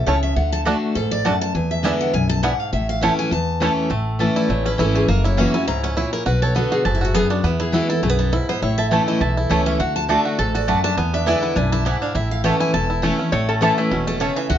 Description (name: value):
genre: bluegrass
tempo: 204 BPM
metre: 4/4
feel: swing 55% on 8ths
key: A major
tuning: A4 = 440 Hz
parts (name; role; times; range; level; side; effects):
- picked steel-string acoustic guitar; melody; 0.0-14.6 s; E4 to A#5; -24 LUFS; left 1 dB; none
- picked steel-string acoustic guitar; accompaniment; 0.0-14.6 s; E2 to F#4; -21 LUFS; left 1 dB; none
- upright bass; bass; 0.0-14.6 s; E1 to E2; -23 LUFS; equal; none
- bluegrass banjo; melody; 0.1-14.6 s; E3 to A4; -25 LUFS; right 4 dB; none
- mandolin; stabs; 0.1-3.7, 8.9-14.3 s; A3 to A5; -24 LUFS; right 4 dB; none
- lap resonator guitar; second line; 13.3-14.0 s; E4 to C#5; -23 LUFS; left 4 dB; none
room: light reverb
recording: nothing above 7.5 kHz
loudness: -17 LUFS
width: side -10 dB against mid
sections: 0.0-3.9 A section; 3.9-13.3 A section; 13.3-14.6 B section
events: none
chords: 0.4 D; 1.5 E7; 2.7 A; 5.1 F#7; 6.3 Bm; 7.4 E; 8.6 A; 9.8 D; 11.0 E7; 12.2 A